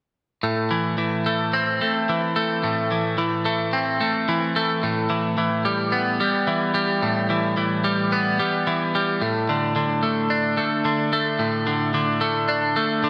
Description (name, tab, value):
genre	rock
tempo	110 BPM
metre	4/4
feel	straight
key	A minor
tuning	A4 = 444 Hz
part	twelve-string electric guitar	solo	0.4-13.1 s	A2 to D4	-22 LUFS	equal	slapback echo
room	moderate huge ambient reverb, RT60 5.8 s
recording	none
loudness	-22 LUFS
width	mono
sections	0.4-13.1 A section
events	none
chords	0.4 Am; 4.8 Em/A; 9.2 D5/A